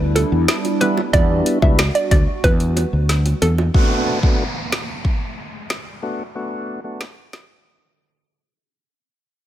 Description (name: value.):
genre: dancehall.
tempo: 92 BPM.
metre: 4/4.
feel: straight.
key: B minor.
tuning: A4 = 440 Hz.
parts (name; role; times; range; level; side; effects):
hollow soft pad; sustained chords; 0.0-3.7 s; G3 to F#4; -24 LUFS; right 2 dB; chorus, sidechain pumping.
fretless electric bass; bass; 0.0-3.7 s; C#2 to E2; -18 LUFS; equal; none.
hollow square pluck; melody; 0.2-3.5 s; A4 to E5; -23 LUFS; right 1 dB; chorus, tape echo.
deep house drum kit; drums; 0.2-7.5 s; finger snaps, hi-hat, kick drum, rim click, snare drum; -18 LUFS; equal; none.
bongos; percussion; 0.2-3.7 s; none; -27 LUFS; right 6 dB; none.
tonewheel organ; accompaniment; 0.8-7.0 s; G3 to F#4; -22 LUFS; left 1 dB; slow rotary speaker, low-pass filter.
downlifter; sound effects; 3.7-9.0 s; none; -27 LUFS; right 2 dB; none.
room: digital ambience.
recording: none.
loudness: -16 LUFS.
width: side -12 dB against mid.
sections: 0.0-3.7 A section; 3.7-9.0 B section.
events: fade-out 3.7-9.0.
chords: 0.0 Em7; 3.7 Bm7.